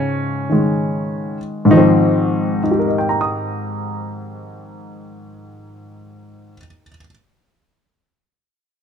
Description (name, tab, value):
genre	solo jazz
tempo	66 BPM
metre	4/4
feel	swing 68% on 8ths, rubato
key	Ab major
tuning	A4 = 440 Hz
part	warm baby grand piano	solo	0.0-7.1 s	Ab2 to Eb6	-16 LUFS	left 1 dB	none
room	light reverb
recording	close, detailed microphones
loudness	-15 LUFS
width	side -7 dB against mid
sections	0.0-1.7 A section; 1.7-5.4 B section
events	slowing down 0.0-1.7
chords	0.0 Ab6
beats	0.78 | 1.70 2.63 3.54 4.45